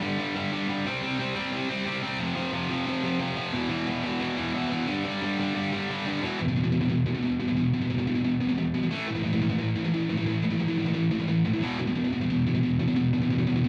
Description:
metal; 178 BPM; 4/4; straight; E phrygian; A4 = 440 Hz
high-gain distorted guitar; solo; 0.0-13.7 s; E2 to C4; -27 LUFS; equal; distortion
little or no reverb; dry, close 1970s-style studio recording; -27 LUFS; mono
0.0-6.2 A section; 6.2-13.7 B section
0.0 G5; 0.9 C5; 2.2 F5; 3.5 E5; 4.9 G5; 6.2 E5; 8.9 A5; 11.6 E5
0.20 0.53 | 0.86 1.20 1.53 1.87 | 2.20 2.54 2.87 3.21 | 3.54 3.88 4.21 4.55 | 4.88 5.22 5.56 5.89 | 6.23 6.56 6.90 7.24 | 7.57 7.91 8.25 8.58 | 8.92 9.26 9.60 9.93 | 10.27 10.61 10.94 11.28 | 11.62 11.95 12.29 12.63 | 12.96 13.30 13.64

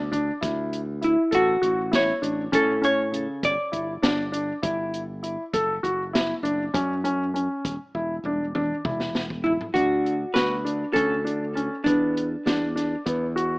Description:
progressive instrumental, band music in an uneven meter; 199 BPM (eighths); 7/8; straight; A4 = 439 Hz
modern bright fingered electric bass; bass; 0.0-13.6 s; E1 to A2; -31 LUFS; equal
warm grand piano; arpeggios; 0.1-13.5 s; C#3 to A4; -26 LUFS; equal
open jazz drum kit; drums; 0.1-13.5 s; hi-hat, kick drum, snare drum, toms; -28 LUFS; equal
vintage hollow-body jazz guitar; melody; 1.0-5.2, 9.4-13.6 s; D4 to D5; -23 LUFS; equal; digital delay
light reverb, small room reverb; rough home demo mix, AM radio sound; -22 LUFS; side -27 dB against mid
0.0-9.7 A section; 9.7-13.6 B section
drum fill 7.9-9.7
0.0 Dsus2; 1.3 A6; 3.4 G5; 5.5 F#5; 7.6 N.C.; 9.7 Dmaj7; 11.9 E5
0.12 0.42 0.72 1.02 | 1.32 1.62 1.93 2.23 2.53 2.83 3.13 | 3.43 3.73 4.03 4.33 4.63 4.93 5.24 | 5.54 5.84 6.14 6.44 6.74 7.04 7.34 | 7.64 7.94 8.24 8.54 8.85 9.15 9.45 | 9.75 10.05 10.35 10.65 10.95 11.25 11.56 | 11.86 12.16 12.46 12.76 13.06 13.36

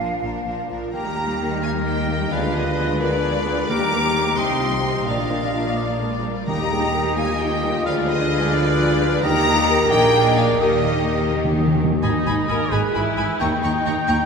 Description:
classical, dramatic, fast romantic movement for symphony orchestra; 87 BPM (dotted quarters); 6/8; rubato; Eb major; A4 = 440 Hz
rich symphonic violin section; melody; 0.0-14.2 s; Bb4 to D6; -26 LUFS; left 2 dB
hollow flute section; second line; 0.0-14.1 s; Bb4 to C#6; -28 LUFS; equal
warm symphonic violin section; second line; 0.0-14.2 s; D4 to A#5; -30 LUFS; left 2 dB
rich symphonic viola section; accompaniment; 0.0-14.3 s; Eb3 to A#4; -27 LUFS; equal
rich symphonic cello section; bass; 0.0-14.2 s; D#2 to Eb3; -26 LUFS; right 1 dB
rich symphonic double bass section; bass; 0.0-14.2 s; G#1 to Eb2; -28 LUFS; right 1 dB
clear oboe; second line; 0.9-14.3 s; Bb4 to G5; -28 LUFS; equal
dark clarinet; second line; 0.9-14.2 s; F4 to G#5; -30 LUFS; left 1 dB
timpani; percussion; 0.9-4.3, 6.5-14.0 s; Eb3; -27 LUFS; left 1 dB
warm French horn section; sustained chords; 1.6-14.3 s; D#3 to B4; -26 LUFS; equal
wet church reverb, RT60 2.6 s; -18 LUFS; side -5 dB against mid
0.9-12.0 A section; 12.0-14.3 B section
timpani fill 10.6-12.0
0.0 Bb; 0.9 Eb; 2.3 Ddim7; 3.7 Eb; 4.4 Cm; 5.1 Bb; 6.5 Eb; 7.9 Ddim7; 9.2 Eb; 9.9 Bb7; 10.6 Eb; 12.0 G#m; 13.4 D#7
0.22 | 0.94 1.63 | 2.32 2.99 | 3.70 4.38 | 5.07 5.77 | 6.47 7.17 | 7.85 8.53 | 9.23 9.91 | 10.61 11.32 | 12.03 12.72 | 13.40 14.08

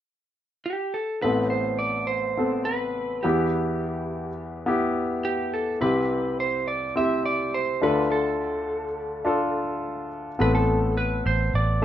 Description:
pop; 105 BPM; 4/4; straight; A minor; A4 = 438 Hz
lightly driven lead guitar; melody; 0.7-11.8 s; G4 to E5; -27 LUFS; right 2 dB
clear baby grand piano; accompaniment; 1.2-11.8 s; A1 to A4; -25 LUFS; left 1 dB
vintage muted fingered electric bass; bass; 10.4-11.8 s; A1; -24 LUFS; right 1 dB
wet studio ambience, RT60 0.5 s; rough home demo mix, nothing above 7.6 kHz; -23 LUFS; side -11 dB against mid
0.0-1.2 A section; 1.2-10.4 B section; 10.4-11.8 C section
0.0 N.C.; 1.2 Amadd9; 3.2 Em; 5.8 C; 7.8 Dm; 10.4 Amadd9
0.10 0.67 | 1.24 1.81 2.39 2.96 | 3.53 4.10 4.68 5.25 | 5.82 6.39 6.96 7.54 | 8.11 8.68 9.25 9.82 | 10.39 10.96 11.54

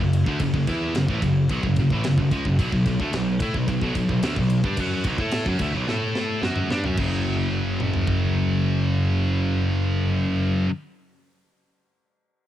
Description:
heavy metal; 109 BPM; 4/4; straight; F# minor; A4 = 440 Hz
scooped high-gain guitar; riff; 0.0-10.7 s; F#2 to A4; -22 LUFS; equal; distortion, cassette tape
fuzz picked electric bass; bass; 0.0-10.6 s; F#1 to A2; -28 LUFS; equal; overdrive
tight metal drum kit; drums; 0.1-8.2 s; crash cymbal, kick drum, ride cymbal, snare drum, toms; -29 LUFS; equal
little or no reverb; home recording on cassette; -20 LUFS; side -12 dB against mid
0.0-7.0 A section; 7.0-9.2 B section
drum fill 5.9-7.0
0.0 F#m; 2.6 B5; 5.9 A5; 6.4 F#5
| 0.40 0.95 1.50 2.04 | 2.59 3.14 3.69 4.23 | 4.78 5.33 5.88 6.43 | 6.98 7.53 8.08 8.63

